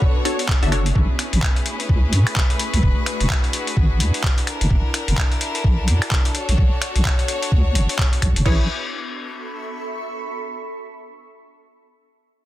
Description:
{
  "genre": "UK garage, two-step garage",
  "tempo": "128 BPM",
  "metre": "4/4",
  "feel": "swing 60% on 16ths",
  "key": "A major",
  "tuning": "A4 = 440 Hz",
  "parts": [
    { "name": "clear studio violin section", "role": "sustained chords", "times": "0.0-8.7 s", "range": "C#4 to C#5", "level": "-28 LUFS", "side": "left 3 dB", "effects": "sidechain pumping" },
    { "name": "punchy chord stab", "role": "stabs", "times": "0.0-0.8, 8.5-8.6 s", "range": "D4 to E5", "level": "-26 LUFS", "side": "left 1 dB", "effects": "chorus, dub echo" },
    { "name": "electronic kick drum", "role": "drums", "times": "0.0-8.6 s", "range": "none", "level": "-18 LUFS", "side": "equal", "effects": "small room ambience" },
    { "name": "granular cloud pad", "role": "texture", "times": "0.0-10.3 s", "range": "A3 to C#6", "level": "-33 LUFS", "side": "right 1 dB", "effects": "built-in reverb, sidechain pumping" },
    { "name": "boom bap sampler-style drum kit", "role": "drums", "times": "0.3-8.6 s", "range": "crash cymbal, finger snaps, handclaps, hi-hat", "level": "-24 LUFS", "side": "left 1 dB", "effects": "soft clipping on snare, small room ambience" },
    { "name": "deep soft wobble bass", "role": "bass", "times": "0.6-8.7 s", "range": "E1 to A2", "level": "-18 LUFS", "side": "equal", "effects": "chorus" }
  ],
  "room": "digital ambience",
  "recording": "dense, heavily limited modern master",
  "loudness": "-17 LUFS",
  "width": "side -15 dB against mid",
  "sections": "0.0-8.5 A section; 8.5-10.3 B section",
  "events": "fade-out on ambient pad 0.0-8.5",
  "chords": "0.0 Bm7; 1.0 Amaj7; 2.8 E7; 4.5 F#7alt; 6.3 Bm7; 8.5 Amaj7"
}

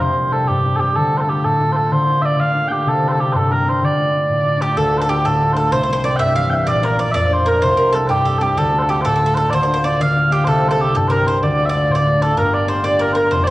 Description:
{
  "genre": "celtic folk, Celtic jig",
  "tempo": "126 BPM (dotted quarters)",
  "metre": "6/8",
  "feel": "straight",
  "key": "D minor",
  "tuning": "A4 = 440 Hz",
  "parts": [
    { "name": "mellow small bagpipes", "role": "melody", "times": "0.0-13.5 s", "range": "G4 to G5", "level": "-17 LUFS", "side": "right 1 dB", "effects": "slapback echo" },
    { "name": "concert harp", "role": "accompaniment", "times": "0.0-13.5 s", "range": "F1 to G4", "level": "-18 LUFS", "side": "left 1 dB", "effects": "none" },
    { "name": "bowl-back mandolin", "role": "second line", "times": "4.6-13.5 s", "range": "G4 to F5", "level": "-21 LUFS", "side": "right 1 dB", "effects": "none" }
  ],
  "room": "wet recital hall reverb, RT60 1.2 s",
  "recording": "worn, warbling old tape, cassette tape, warbly pitch drift",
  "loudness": "-14 LUFS",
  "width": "side -17 dB against mid",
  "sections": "0.0-4.8 A section; 4.8-12.4 A section; 12.4-13.5 B section",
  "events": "none",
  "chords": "0.0 C; 1.0 Dm; 1.9 Bb/D; 2.9 C; 3.8 Dm; 5.7 C; 6.7 Bb; 7.6 C; 8.6 Dm; 9.5 Bb/D; 10.5 C; 11.4 Dm; 12.4 Gm"
}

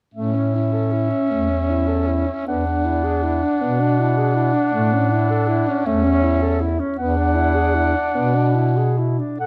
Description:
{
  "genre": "classical, lyrical piece for single-reed quartet",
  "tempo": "46-54 BPM (dotted quarters)",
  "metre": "6/8",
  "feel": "rubato",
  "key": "A major",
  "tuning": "A4 = 439 Hz",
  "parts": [
    { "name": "warm clarinet", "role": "melody", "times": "0.1-9.5 s", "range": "E5 to F#5", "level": "-27 LUFS", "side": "equal", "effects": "none" },
    { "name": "clear alto saxophone", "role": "second line", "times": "0.1-9.5 s", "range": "A3 to A4", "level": "-26 LUFS", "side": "equal", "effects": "none" },
    { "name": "mellow tenor saxophone", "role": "accompaniment", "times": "0.1-9.5 s", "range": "C#4 to D4", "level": "-25 LUFS", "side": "equal", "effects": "none" },
    { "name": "warm bass clarinet", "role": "bass", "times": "0.1-9.5 s", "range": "E2 to B2", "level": "-23 LUFS", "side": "equal", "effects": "none" }
  ],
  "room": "moderate recital hall reverb, RT60 1.5 s",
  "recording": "close, detailed microphones",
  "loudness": "-19 LUFS",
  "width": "mono",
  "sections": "0.1-9.4 A section",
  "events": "none",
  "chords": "0.1 A; 2.5 E7sus2; 4.7 A; 7.0 E7sus2"
}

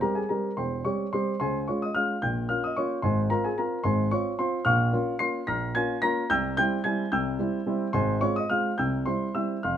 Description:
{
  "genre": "classical-period piano sonatina",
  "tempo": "73 BPM (dotted quarters)",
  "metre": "6/8",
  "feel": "straight",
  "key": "unclear",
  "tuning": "A4 = 444 Hz",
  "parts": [
    { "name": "warm grand piano", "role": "solo", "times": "0.0-9.8 s", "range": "E1 to C7", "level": "-24 LUFS", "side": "equal", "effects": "none" }
  ],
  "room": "light reverb",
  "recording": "minimal, uncompressed stereo recording",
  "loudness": "-24 LUFS",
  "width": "side -9 dB against mid",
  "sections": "0.0-9.8 A section",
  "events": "none",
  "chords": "0.0 C; 1.4 Db; 2.2 Bbm; 3.0 Fm/Ab; 4.7 Bbm; 6.3 C; 7.9 Fm/Ab; 8.8 C"
}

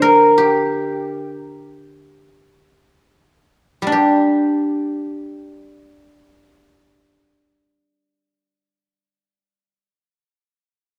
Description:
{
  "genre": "chinese traditional, Chinese solo plucked strings",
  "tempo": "free time",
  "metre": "none",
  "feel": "none",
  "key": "G yu mode",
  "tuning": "A4 = 440 Hz",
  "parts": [
    { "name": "guzheng", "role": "solo", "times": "0.0-9.9 s", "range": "D3 to D5", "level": "-17 LUFS", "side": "equal", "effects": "none" }
  ],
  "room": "moderate concert hall reverb, RT60 2.0 s",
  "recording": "dark, warm production",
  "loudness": "-17 LUFS",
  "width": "mono",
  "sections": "0.0-3.9 A section; 3.9-7.9 B section",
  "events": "slowing down 0.0-3.9",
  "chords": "none"
}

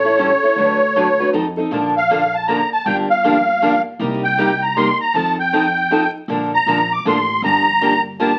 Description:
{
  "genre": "acoustic string swing (jazz manouche)",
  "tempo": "157 BPM",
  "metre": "3/4",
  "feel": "swing 62% on 8ths",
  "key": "Bb major",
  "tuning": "A4 = 440 Hz",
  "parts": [
    { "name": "musette accordion", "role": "melody", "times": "0.0-8.4 s", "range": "C#5 to D6", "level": "-18 LUFS", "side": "equal", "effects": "none" },
    { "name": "picked steel-string acoustic guitar", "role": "second line", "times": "0.0-1.3 s", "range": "A4", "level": "-30 LUFS", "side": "equal", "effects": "none" },
    { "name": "picked steel-string acoustic guitar", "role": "accompaniment", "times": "0.0-8.3 s", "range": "C3 to B4", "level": "-22 LUFS", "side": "equal", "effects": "none" },
    { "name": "upright bass", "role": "bass", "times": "0.0-8.3 s", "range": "G1 to F2", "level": "-31 LUFS", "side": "equal", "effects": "none" }
  ],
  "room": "moderate studio reverb, RT60 0.8 s",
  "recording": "very old 78 rpm record, vinyl crackle",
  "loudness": "-17 LUFS",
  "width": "mono",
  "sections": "0.0-1.7 A section; 1.7-8.4 B section",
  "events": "none",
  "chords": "0.0 A7; 0.6 D6; 1.3 F7; 1.7 Bbmaj7; 2.9 Gm7; 4.0 Cm7; 5.1 F7; 6.3 Bbmaj9; 7.4 Gm7"
}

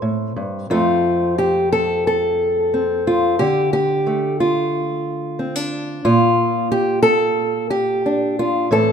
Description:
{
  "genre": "folk, solo fingerstyle acoustic guitar",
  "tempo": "90 BPM",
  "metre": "4/4",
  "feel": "rubato",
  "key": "unclear",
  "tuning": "A4 = 439 Hz",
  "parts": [
    { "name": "fingerpicked old ladder-braced acoustic guitar", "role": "solo", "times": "0.0-8.9 s", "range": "F2 to C5", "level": "-16 LUFS", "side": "equal", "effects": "none" }
  ],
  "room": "light reverb",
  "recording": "minimal, uncompressed stereo recording",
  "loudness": "-16 LUFS",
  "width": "side -7 dB against mid",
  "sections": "0.0-8.9 A section",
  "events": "none",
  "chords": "0.0 Am; 0.7 F; 3.4 Dm; 6.0 Bb"
}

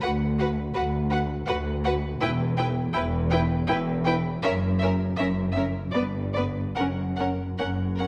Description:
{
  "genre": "classical, slow romantic movement for string orchestra",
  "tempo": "72-83 BPM",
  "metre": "3/4",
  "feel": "rubato",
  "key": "B minor",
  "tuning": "A4 = 440 Hz",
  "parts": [
    { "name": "muted chamber violin section", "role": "melody", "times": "0.0-8.1 s", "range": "D5 to G5", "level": "-34 LUFS", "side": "equal", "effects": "none" },
    { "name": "muted chamber violin section", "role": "second line", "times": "0.0-8.1 s", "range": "A#4 to B4", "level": "-36 LUFS", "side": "equal", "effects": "none" },
    { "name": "muted chamber viola section", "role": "accompaniment", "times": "0.0-8.1 s", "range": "B3 to F#4", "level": "-34 LUFS", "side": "equal", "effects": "none" },
    { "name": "muted chamber cello section", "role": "bass", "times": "0.0-8.1 s", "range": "D2 to G2", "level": "-31 LUFS", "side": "equal", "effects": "none" },
    { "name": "muted chamber double bass section", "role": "bass", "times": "0.0-8.1 s", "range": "E1 to D2", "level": "-32 LUFS", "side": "equal", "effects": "none" }
  ],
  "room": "moderate scoring stage reverb, RT60 1.4 s",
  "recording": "none",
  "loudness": "-26 LUFS",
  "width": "mono",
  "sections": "0.0-8.1 A section",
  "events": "none",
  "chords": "0.0 Bm/D (rootless); 2.2 Em; 4.4 F#; 5.9 G; 6.8 F#5"
}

